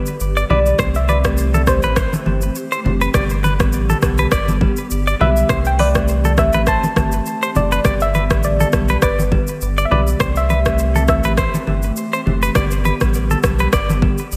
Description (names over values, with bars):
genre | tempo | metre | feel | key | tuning
afrobeats | 102 BPM | 4/4 | swing 55% on 16ths | G major | A4 = 441 Hz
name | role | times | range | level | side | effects
soft round pluck | melody | 0.0-11.6 s | B4 to A5 | -23 LUFS | equal | chorus, delay
bell-like tine electric piano | accompaniment | 0.0-14.2 s | D3 to G4 | -28 LUFS | equal | none
hollow soft pad | sustained chords | 0.0-14.4 s | D3 to G4 | -31 LUFS | equal | none
afro-pop drum kit | drums | 0.1-14.4 s | hi-hat, kick drum, rim click, shaker | -22 LUFS | equal | none
warm sub bass | bass | 0.2-14.4 s | F#1 to C2 | -21 LUFS | equal | none
direct-recorded clean electric guitar | riff | 0.4-13.9 s | A4 to D5 | -26 LUFS | equal | delay
congas | percussion | 0.5-14.2 s | none | -26 LUFS | equal | none
room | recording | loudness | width
moderate lush hall reverb, RT60 1.8 s | dreamy mix soaked in reverb | -17 LUFS | mono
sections
0.0-14.4 A section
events
none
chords
0.0 G; 0.8 C6; 3.1 G; 5.5 C6; 7.8 G; 10.2 C6; 12.6 G